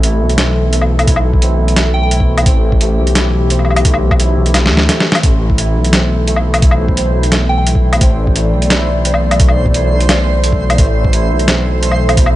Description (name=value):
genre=half-time drum and bass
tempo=173 BPM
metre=4/4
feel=half-time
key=A minor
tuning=A4 = 438 Hz
part: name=dark analog pad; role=sustained chords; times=0.0-12.4 s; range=E3 to D5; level=-20 LUFS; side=left 2 dB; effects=chorus, sidechain pumping
part: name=santur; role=arpeggios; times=0.0-12.4 s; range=A3 to A4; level=-22 LUFS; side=right 2 dB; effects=digital delay
part: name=dark detuned saw bass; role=bass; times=0.0-12.4 s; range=A1 to D2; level=-14 LUFS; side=equal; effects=none
part: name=boom bap sampler-style drum kit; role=drums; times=0.0-12.3 s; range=hi-hat, snare drum, woodblock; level=-16 LUFS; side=equal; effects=none
part: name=electronic kick drum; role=drums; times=1.1-12.2 s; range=none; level=-13 LUFS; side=equal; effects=none
part: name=soft synth bell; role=melody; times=1.9-2.1, 7.5-7.6 s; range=G5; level=-24 LUFS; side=right 2 dB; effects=chorus, phaser, digital delay
part: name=backwards swelling texture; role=texture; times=6.1-12.4 s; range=C5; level=-24 LUFS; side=right 5 dB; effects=built-in reverb
room=little or no reverb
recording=nothing above 10.7 kHz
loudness=-10 LUFS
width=side -15 dB against mid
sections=0.0-12.4 A section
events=drum fill 4.5-5.2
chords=0.0 A5